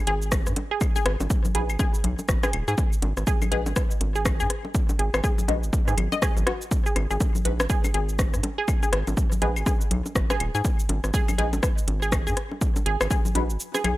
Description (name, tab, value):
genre	minimal techno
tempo	122 BPM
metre	4/4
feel	swing 60% on 16ths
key	G# minor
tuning	A4 = 439 Hz
part	resonant blip pluck	riff	0.1-13.9 s	F#4 to D#5	-30 LUFS	equal	chorus, vintage 12-bit sampler grit, sidechain pumping, analog delay
part	rubbery square bass	bass	0.1-13.9 s	D#1 to G#2	-27 LUFS	equal	sidechain pumping
part	house drum kit	drums	0.1-14.0 s	cabasa, hi-hat, rim click	-31 LUFS	equal	overdrive
part	electronic kick drum	drums	0.3-13.2 s	none	-24 LUFS	equal	overdrive
part	electronic bongos, rim click, claves and congas	percussion	0.3-14.0 s	none	-29 LUFS	left 2 dB	overdrive, tape echo
part	filtered dub chord stab	stabs	1.5-13.4 s	G#3 to B4	-33 LUFS	left 3 dB	phaser, wide subtle chorus, tape echo
room	digital ambience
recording	dry, gritty hardware recording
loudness	-22 LUFS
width	side -17 dB against mid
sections	0.0-14.0 A section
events	kick drops out 13.6-14.0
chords	none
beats	0.32 | 0.81 1.30 1.79 2.29 | 2.78 3.27 3.76 4.25 | 4.75 5.24 5.73 6.22 | 6.71 7.20 7.70 8.19 | 8.68 9.17 9.66 10.15 | 10.65 11.14 11.63 12.12 | 12.61 13.11 13.60